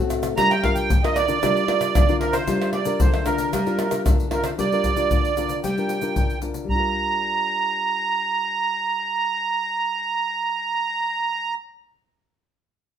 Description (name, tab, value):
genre	samba and choro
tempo	114 BPM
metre	4/4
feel	straight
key	G minor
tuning	A4 = 440 Hz
part	nylon-string guitar	accompaniment	0.0-11.7 s	A2 to Bb4	-25 LUFS	left 3 dB	none
part	egg shaker, pandeiro, tamborim and surdo	percussion	0.1-6.8 s	none	-23 LUFS	left 1 dB	none
part	accordion	melody	0.4-11.5 s	Bb4 to Bb5	-22 LUFS	right 4 dB	light tremolo tuning
room	moderate studio reverb, RT60 0.8 s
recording	minimal, uncompressed stereo recording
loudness	-20 LUFS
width	side -9 dB against mid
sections	0.0-4.6 A section; 4.6-6.7 B section; 6.7-10.9 C section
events	none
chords	0.4 Gm7